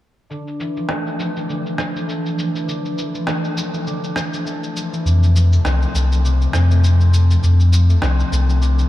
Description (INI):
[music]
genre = folktronica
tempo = 101 BPM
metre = 4/4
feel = swing 56% on 16ths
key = D minor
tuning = A4 = 440 Hz
[part]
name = concert harp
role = arpeggios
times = 0.3-8.9 s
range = C3 to C4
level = -23 LUFS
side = equal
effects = low-pass filter, diffuse ambient delay
[part]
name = electronic shaker and rim click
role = drums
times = 0.3-8.9 s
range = none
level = -26 LUFS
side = equal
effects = low-pass filter on perc, small room reverb, low-pass filter on snare
[part]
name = warm sub bass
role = bass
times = 5.1-8.8 s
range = C2 to F2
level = -13 LUFS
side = left 1 dB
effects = none
[sound]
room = light reverb, digital ambience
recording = none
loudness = -15 LUFS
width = side -14 dB against mid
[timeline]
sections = 0.3-8.9 A section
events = filter sweep on drum 0.3-8.9; filter sweep on harp 0.3-8.9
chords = 0.3 Dmadd9; 5.0 F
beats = | 0.30 0.89 1.49 2.08 | 2.67 3.27 3.86 4.46 | 5.05 5.64 6.24 6.83 | 7.43 8.02 8.62